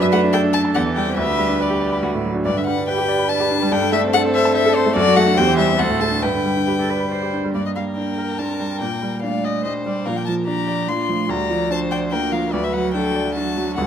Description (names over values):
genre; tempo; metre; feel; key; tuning
quick classical-period movement for piano quartet; 144 BPM; 3/4; straight; G major, G minor from 7.6 s; A4 = 438 Hz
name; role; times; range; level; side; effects
warm violin; melody; 0.0-13.9 s; C5 to C6; -22 LUFS; left 7 dB; none
dark violin; second line; 0.0-13.9 s; D4 to D5; -26 LUFS; left 2 dB; none
warm cello; second line; 0.0-13.9 s; F3 to C5; -26 LUFS; right 6 dB; none
bright concert grand piano; accompaniment; 0.0-13.9 s; C#2 to B5; -20 LUFS; right 1 dB; none
room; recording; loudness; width
moderate recital hall reverb, RT60 1.4 s; close, detailed microphones; -17 LUFS; side -8 dB against mid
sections
0.0-7.6 A section; 7.6-13.9 B section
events
none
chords
0.0 D/F#; 0.7 C/E; 1.2 G/D; 2.0 D; 2.5 G; 3.7 Am7/G; 5.0 D/F#; 5.4 C/E; 5.8 D7; 6.2 G; 7.6 Gm; 8.8 Gm/Bb; 10.1 Bb; 11.3 Bb/D; 12.5 D